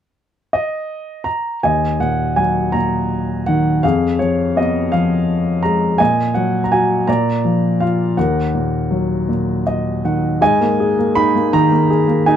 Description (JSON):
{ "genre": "classical, lyrical solo piano", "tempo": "55 BPM (dotted quarters)", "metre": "6/8", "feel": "rubato", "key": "Eb minor", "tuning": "A4 = 440 Hz", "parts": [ { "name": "warm upright piano", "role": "solo", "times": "0.5-12.4 s", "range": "Eb2 to Cb6", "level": "-14 LUFS", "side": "equal", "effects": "none" } ], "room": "light reverb", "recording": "dark, warm production", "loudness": "-14 LUFS", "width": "side -9 dB against mid", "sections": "0.0-1.6 A section; 1.6-10.4 B section; 10.4-12.4 C section", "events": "upright piano fill 9.3-10.4", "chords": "0.0 N.C.; 1.6 Ebm; 3.8 Fdim; 6.0 Ebm/Bb; 7.1 Bb; 8.2 Ebm; 10.4 Absus2" }